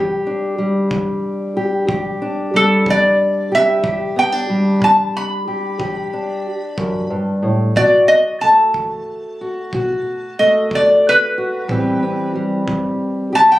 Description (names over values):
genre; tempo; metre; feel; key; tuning
acoustic country blues, solo or duo; 61 BPM (dotted quarters); 12/8; straight; E minor; A4 = 440 Hz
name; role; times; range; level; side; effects
fingerpicked steel-string acoustic guitar; accompaniment; 0.0-13.6 s; E2 to G4; -19 LUFS; equal; none
kick drum; drums; 0.9-12.8 s; none; -28 LUFS; equal; none
lap resonator guitar; melody; 2.6-13.6 s; A4 to B5; -13 LUFS; equal; none
room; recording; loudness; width
moderate studio reverb, RT60 0.5 s; recorded on a phone in the room, club reverb; -14 LUFS; side -15 dB against mid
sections
0.0-13.6 A section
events
resonator guitar played with a steel bar solo 0.0-13.6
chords
0.0 Em7; 7.8 B7; 11.7 Am7